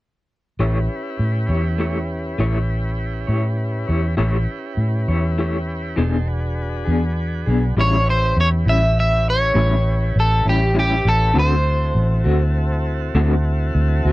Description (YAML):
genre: slow blues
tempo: 67 BPM (dotted quarters)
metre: 12/8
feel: straight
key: A mixolydian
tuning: A4 = 440 Hz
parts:
  - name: electric guitar through a small old amp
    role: accompaniment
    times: 0.6-14.1 s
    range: A2 to C#5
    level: -22 LUFS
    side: left 2 dB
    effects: tremolo
  - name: tonewheel organ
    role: sustained chords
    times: 0.6-14.1 s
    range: C4 to C5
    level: -28 LUFS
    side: equal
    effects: slow rotary speaker
  - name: vintage muted fingered electric bass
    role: bass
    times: 0.6-14.1 s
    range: E1 to A2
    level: -18 LUFS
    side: equal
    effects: none
  - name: electric guitar at the edge of break-up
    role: melody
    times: 7.8-13.1 s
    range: G4 to E5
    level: -20 LUFS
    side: equal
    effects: none
room: little or no reverb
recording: dry, close 1970s-style studio recording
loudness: -17 LUFS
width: side -18 dB against mid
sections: 0.6-7.8 A section; 7.8-14.1 B section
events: none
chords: 0.6 A7; 6.0 E7; 7.8 A7; 11.4 D7